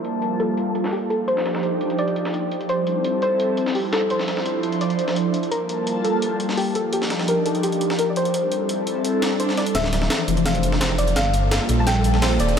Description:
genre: liquid drum and bass.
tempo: 170 BPM.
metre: 4/4.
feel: straight.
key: D minor.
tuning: A4 = 440 Hz.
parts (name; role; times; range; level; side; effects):
soft round pluck; melody; 0.0-12.6 s; G4 to A5; -24 LUFS; equal; lush chorus, cassette tape, analog delay.
airy breathy pad; sustained chords; 0.0-12.6 s; E3 to A5; -23 LUFS; equal; chorus, phaser, sidechain pumping.
breakbeat sampler-style drum kit; drums; 0.0-12.5 s; hi-hat, snare drum; -29 LUFS; equal; high-pass filter on hats, high-pass filter on snare.
swell; sound effects; 9.2-9.8 s; none; -32 LUFS; right 2 dB; none.
dark detuned saw bass; bass; 9.7-12.6 s; D1 to Bb1; -21 LUFS; equal; none.
breakbeat sampler-style drum kit; drums; 9.7-12.6 s; cabasa, hi-hat, snare drum; -26 LUFS; equal; high-pass filter on snare, high-pass filter on hats, high-pass filter on perc.
electronic kick drum; drums; 9.7-12.3 s; none; barely audible; none; none.
room: moderate huge ambient reverb, RT60 7.2 s.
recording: dreamy mix soaked in reverb, low-pass filter.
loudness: -19 LUFS.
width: side -7 dB against mid.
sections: 0.0-9.8 A section; 9.8-12.6 B section.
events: filter sweep 0.0-9.8; swell 9.2-9.8; build-up 9.8-12.6; drum fill 9.8-12.6.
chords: 0.0 Gm9; 1.1 Ebmaj9; 2.7 Am7; 4.1 Dm9; 5.5 Gm9; 6.8 Ebmaj9; 8.3 Am7; 9.8 Dm9; 11.2 Gm9.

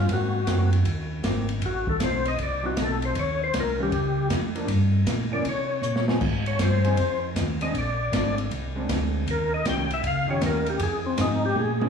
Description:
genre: soul jazz organ trio.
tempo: 157 BPM.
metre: 4/4.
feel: swing 65% on 8ths.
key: unclear.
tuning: A4 = 441 Hz.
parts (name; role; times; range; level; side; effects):
percussive tonewheel organ; melody; 0.0-11.9 s; C4 to G5; -28 LUFS; left 3 dB; slow rotary speaker, overdrive, chorus vibrato, slapback echo.
mellow tonewheel organ; bass; 0.0-11.9 s; Ab1 to C3; -26 LUFS; equal; slow rotary speaker.
hollow-body jazz guitar; accompaniment; 0.1-11.9 s; Eb3 to Ab4; -32 LUFS; right 2 dB; slapback echo.
open jazz drum kit; drums; 0.1-11.9 s; crash cymbal, hi-hat, kick drum, ride cymbal, snare drum, toms; -29 LUFS; left 1 dB; none.
room: light reverb, small room ambience.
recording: live gig heard through the venue's PA, club reverb, studio reverb.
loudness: -22 LUFS.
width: side -6 dB against mid.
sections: 0.0-11.9 A section.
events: tonewheel organ solo 0.0-11.9; drum fill 5.8-6.2, 11.6-11.9.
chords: 0.1 Ab9; 1.6 Adim7; 3.2 Eb9; 4.7 Gm; 5.4 Bbm11; 6.2 Fm7; 7.7 Bb9; 9.3 Eb9; 10.8 Fm7.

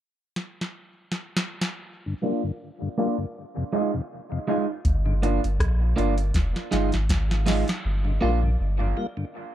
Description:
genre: dub reggae.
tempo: 80 BPM.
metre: 4/4.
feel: swing 56% on 16ths.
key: G phrygian.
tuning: A4 = 440 Hz.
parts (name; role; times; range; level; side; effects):
soft vintage rhythm box; drums; 0.4-7.8 s; hi-hat, kick drum, rim click, snare drum; -26 LUFS; equal; overdrive.
mellow tonewheel organ; accompaniment; 2.1-9.3 s; F2 to F4; -31 LUFS; left 3 dB; slow rotary speaker, low-pass filter, dub echo.
electric guitar at the edge of break-up; accompaniment; 2.2-8.4 s; Ab3 to F4; -28 LUFS; right 2 dB; low-pass filter, dub echo.
warm sub bass; bass; 4.9-8.9 s; F1 to Bb1; -23 LUFS; equal; none.
room: light reverb.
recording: dark, warm production.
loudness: -23 LUFS.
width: side -12 dB against mid.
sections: 0.0-1.9 A section; 1.9-7.8 B section; 7.8-9.5 C section.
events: drum fill 0.4-1.9, 6.3-7.8; part muted 1.9-4.8, 7.8-9.5; filter sweep 1.9-7.8.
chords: 0.0 N.C.; 1.9 Gm7; 3.4 Fm7; 4.8 Gm7; 6.3 Fm7; 7.8 Gm7.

